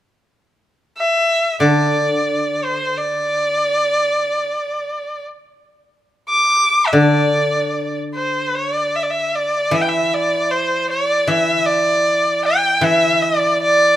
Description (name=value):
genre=chinese traditional, Chinese chamber ensemble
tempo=free time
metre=none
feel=none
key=unclear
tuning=A4 = 442 Hz
part: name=clear erhu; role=melody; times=1.0-14.0 s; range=C5 to D6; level=-16 LUFS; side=equal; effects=none
part: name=guzheng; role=accompaniment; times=1.6-14.0 s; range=D3 to E3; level=-20 LUFS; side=left 1 dB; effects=none
room=light reverb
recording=close, detailed microphones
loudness=-15 LUFS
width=side -12 dB against mid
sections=0.4-8.2 A section; 8.2-14.0 B section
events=none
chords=none